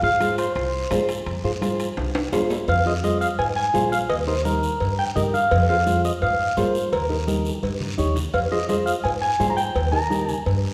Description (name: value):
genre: latin, cumbia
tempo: 170 BPM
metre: 4/4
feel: straight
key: F minor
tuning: A4 = 441 Hz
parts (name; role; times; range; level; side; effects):
- clean electric guitar; melody; 0.0-10.4 s; Bb4 to Bb5; -25 LUFS; equal; spring reverb
- nylon-string guitar; accompaniment; 0.0-10.4 s; Eb4 to Db5; -29 LUFS; equal; none
- upright bass; bass; 0.0-10.7 s; Bb1 to Ab2; -28 LUFS; equal; none
- congas; percussion; 0.2-10.6 s; none; -34 LUFS; equal; none
- guiro; percussion; 0.2-10.7 s; none; -40 LUFS; equal; none
- timbales and cowbell; percussion; 0.2-10.6 s; none; -31 LUFS; equal; none
room: wet recital hall reverb, RT60 1.5 s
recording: recorded in a church or concert hall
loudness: -22 LUFS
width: mono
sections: 0.0-2.7 A section; 2.7-10.7 B section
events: drum fill 2.0-2.7, 7.3-8.3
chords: 0.0 Fm; 4.1 Eb; 5.5 Fm; 6.9 Eb; 8.3 Fm; 9.8 Eb